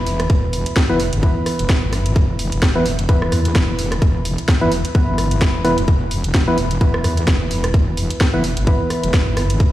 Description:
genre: bass house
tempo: 129 BPM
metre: 4/4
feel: swing 56% on 16ths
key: E phrygian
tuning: A4 = 440 Hz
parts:
  - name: percussive organ stab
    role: stabs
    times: 0.0-9.7 s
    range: E3 to B4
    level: -21 LUFS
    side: equal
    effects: chorus, sidechain pumping, dub echo
  - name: wobble bass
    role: bass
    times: 0.0-9.7 s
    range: E1 to E2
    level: -21 LUFS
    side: equal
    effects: chorus, overdrive, sidechain pumping
  - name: garage drum kit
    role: drums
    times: 0.1-9.7 s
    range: hi-hat, rim click, snare drum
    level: -24 LUFS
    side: right 1 dB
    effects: overdrive
  - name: electronic kick drum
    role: drums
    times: 0.3-9.7 s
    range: none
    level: -15 LUFS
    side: equal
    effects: overdrive
room: light reverb, digital ambience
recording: played on a big sound system in a bare room, stone room reverb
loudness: -15 LUFS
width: side -14 dB against mid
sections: 0.0-9.7 A section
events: none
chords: 0.0 E5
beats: | 0.30 0.76 1.23 1.69 | 2.16 2.62 3.09 3.55 | 4.02 4.48 4.95 5.42 | 5.88 6.34 6.81 7.28 | 7.74 8.21 8.67 9.14 | 9.60

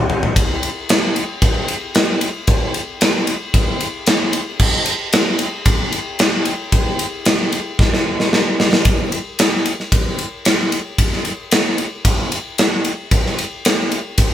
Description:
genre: rock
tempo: 113 BPM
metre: 4/4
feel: straight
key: none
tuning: none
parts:
  - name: gated 80s drum kit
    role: drums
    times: 0.1-14.3 s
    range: crash cymbal, kick drum, ride cymbal, snare drum, toms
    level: -15 LUFS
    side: equal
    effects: none
room: light reverb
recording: band playing live in one room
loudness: -15 LUFS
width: side -11 dB against mid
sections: 0.4-8.9 A section; 8.9-14.3 B section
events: drum fill 0.0-0.4, 7.8-8.9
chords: none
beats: | 0.36 0.89 1.42 1.95 | 2.48 3.01 3.54 4.07 | 4.60 5.13 5.66 6.20 | 6.73 7.26 7.79 8.32 | 8.86 9.39 9.92 10.46 | 10.99 11.52 12.05 12.59 | 13.12 13.65 14.18

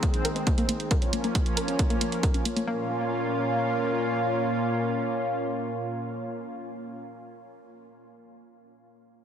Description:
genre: uplifting trance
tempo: 136 BPM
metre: 4/4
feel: straight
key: Bb minor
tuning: A4 = 440 Hz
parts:
  - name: lush unison pad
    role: sustained chords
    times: 0.0-7.0 s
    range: Bb2 to F4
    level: -28 LUFS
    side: equal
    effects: chorus, vintage 12-bit sampler grit, sidechain pumping
  - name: analog pluck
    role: arpeggios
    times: 0.0-2.9 s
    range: Bb3 to Bb4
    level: -34 LUFS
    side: left 2 dB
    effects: chorus, sidechain pumping, ping-pong delay
  - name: electronic hi-hat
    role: drums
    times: 0.0-2.7 s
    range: none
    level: -32 LUFS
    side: right 5 dB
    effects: studio reverb
  - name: electronic kick drum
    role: drums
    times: 0.0-2.3 s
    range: none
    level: -25 LUFS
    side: equal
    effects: studio reverb
room: moderate huge ambient reverb, RT60 7.9 s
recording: heavily compressed radio sound, multiband compression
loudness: -24 LUFS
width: side -8 dB against mid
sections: 0.0-2.7 A section; 2.7-6.2 B section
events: filter sweep on synth pluck 0.0-2.7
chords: 0.0 Ab; 0.9 Bbm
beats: 0.03 0.47 | 0.91 1.35 1.79 2.23 | 2.67 3.12 3.56 4.00 | 4.44 4.88 5.32 5.76

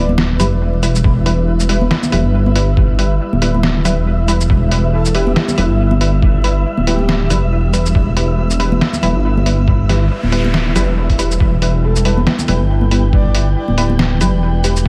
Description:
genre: deep dubstep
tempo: 139 BPM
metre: 4/4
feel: swing 57% on 16ths, half-time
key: E minor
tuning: A4 = 445 Hz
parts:
  - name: breathy flute-like synth lead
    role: melody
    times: 0.0-0.1, 4.9-7.3, 11.8-13.9 s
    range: E4 to D5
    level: -30 LUFS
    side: equal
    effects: subtle chorus, dub echo
  - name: granular cloud pad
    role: sustained chords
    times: 0.1-14.9 s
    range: G3 to E5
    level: -28 LUFS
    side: equal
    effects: built-in reverb
  - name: filtered dub chord stab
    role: stabs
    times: 0.0-14.8 s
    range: G3 to B4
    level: -24 LUFS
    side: equal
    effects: chorus, dub echo
  - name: dark detuned saw bass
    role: bass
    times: 0.0-14.9 s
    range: D1 to G1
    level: -17 LUFS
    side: equal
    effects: none
  - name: wind-like tuned noise texture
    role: texture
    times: 0.1-14.9 s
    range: E5 to G5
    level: -31 LUFS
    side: equal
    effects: built-in reverb
  - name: congas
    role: percussion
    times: 0.1-14.3 s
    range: none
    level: -23 LUFS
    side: equal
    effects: none
  - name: trip hop sampler-style drum kit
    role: drums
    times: 0.2-14.8 s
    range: hi-hat, shaker, snare drum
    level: -22 LUFS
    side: equal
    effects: none
  - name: electronic kick drum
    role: drums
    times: 1.0-14.9 s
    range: none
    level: -17 LUFS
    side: equal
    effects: none
  - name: noise sweep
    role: sound effects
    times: 10.1-11.4 s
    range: none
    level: -31 LUFS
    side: equal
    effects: none
room: digital ambience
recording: vinyl crackle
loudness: -14 LUFS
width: mono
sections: 0.0-14.9 A section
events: noise sweep 10.1-11.4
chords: 0.0 Em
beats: 0.18 0.61 | 1.04 1.48 1.91 2.34 | 2.77 3.20 3.63 4.07 | 4.50 4.93 5.36 5.79 | 6.22 6.66 7.09 7.52 | 7.95 8.38 8.81 9.24 | 9.68 10.11 10.54 10.97 | 11.40 11.84 12.27 12.70 | 13.13 13.56 13.99 14.43 | 14.86

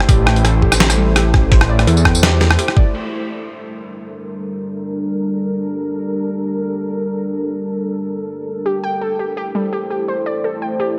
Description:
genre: half-time drum and bass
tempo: 168 BPM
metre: 4/4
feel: half-time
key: G dorian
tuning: A4 = 440 Hz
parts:
  - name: deep dark ambient pad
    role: sustained chords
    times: 0.0-11.0 s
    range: G3 to C5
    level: -24 LUFS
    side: equal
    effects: chorus, built-in reverb, sidechain pumping
  - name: warbly dusty pluck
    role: arpeggios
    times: 0.0-2.9, 8.7-11.0 s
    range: G3 to G5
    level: -24 LUFS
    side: equal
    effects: chorus, phaser, digital delay
  - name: boom bap sampler-style drum kit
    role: drums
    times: 0.0-3.0 s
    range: crash cymbal, hi-hat, rim click, snare drum, tambourine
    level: -19 LUFS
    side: equal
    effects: low-pass filter on snare, studio ambience, low-pass filter on hats, low-pass filter on perc, low-pass filter on cymbals
  - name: dark detuned saw bass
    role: bass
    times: 0.1-2.6 s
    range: A1 to E2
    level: -17 LUFS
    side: equal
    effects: none
  - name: electronic kick drum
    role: drums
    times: 0.1-2.8 s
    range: none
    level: -15 LUFS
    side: equal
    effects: studio ambience
room: light reverb, digital ambience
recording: none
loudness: -17 LUFS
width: mono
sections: 0.0-2.9 A section; 2.9-11.0 B section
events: drop 0.0-2.9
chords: 0.0 Am; 2.9 Gm; 8.7 Am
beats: | 0.09 0.44 0.80 1.16 | 1.52 1.87 2.23 2.59 | 2.94 3.30 3.66 4.02 | 4.37 4.73 5.09 5.44 | 5.80 6.16 6.52 6.87 | 7.23 7.59 7.94 8.30 | 8.66 9.02 9.37 9.73 | 10.09 10.44 10.80

